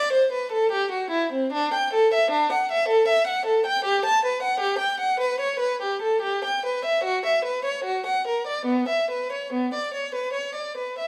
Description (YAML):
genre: classical, baroque-style suite movement for unaccompanied violin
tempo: 75 BPM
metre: 3/4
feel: uneven beats, rubato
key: B minor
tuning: A4 = 445 Hz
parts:
  - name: warm violin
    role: solo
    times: 0.0-11.1 s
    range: B3 to A5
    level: -24 LUFS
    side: equal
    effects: none
room: wet stone room reverb, RT60 1.0 s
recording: heard from further back in the room, vinyl crackle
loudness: -24 LUFS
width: mono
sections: 0.0-11.1 A section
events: none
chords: none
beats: 0.71 | 1.52 2.31 3.08 | 3.85 4.62 5.41 | 6.23 7.04 7.84 | 8.68 9.52 10.35